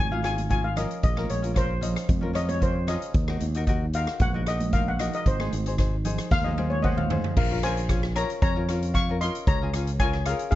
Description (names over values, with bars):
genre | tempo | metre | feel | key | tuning
calypso | 114 BPM | 4/4 | straight | unclear | A4 = 440 Hz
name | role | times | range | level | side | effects
steel pan | melody | 0.0-10.6 s | Ab4 to Db6 | -29 LUFS | left 2 dB | plate reverb
fingered electric bass | bass | 0.0-10.6 s | Ab1 to F2 | -27 LUFS | equal | none
tenor ukulele | accompaniment | 0.1-10.5 s | Db4 to Db5 | -34 LUFS | left 4 dB | plate reverb
congas | percussion | 0.1-7.2 s | none | -34 LUFS | right 4 dB | none
street-band drum kit | drums | 0.2-10.6 s | crash cymbal, hi-hat, kick drum, rim click, snare drum, toms | -26 LUFS | equal | none
room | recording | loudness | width
little or no reverb | dark, warm production, nothing above 7.8 kHz | -23 LUFS | side -14 dB against mid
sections
0.0-7.4 A section; 7.4-10.6 B section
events
steel pan solo 0.0-7.4; drum fill 6.3-7.4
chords
0.0 Db; 1.0 Bbmadd9; 3.2 Ebm; 5.3 Ab; 7.4 Bbm; 9.5 Db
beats
0.51 | 1.04 1.57 2.10 2.62 | 3.15 3.68 4.21 4.73 | 5.26 5.79 6.31 6.84 | 7.37 7.89 8.42 8.94 | 9.47 9.99 10.52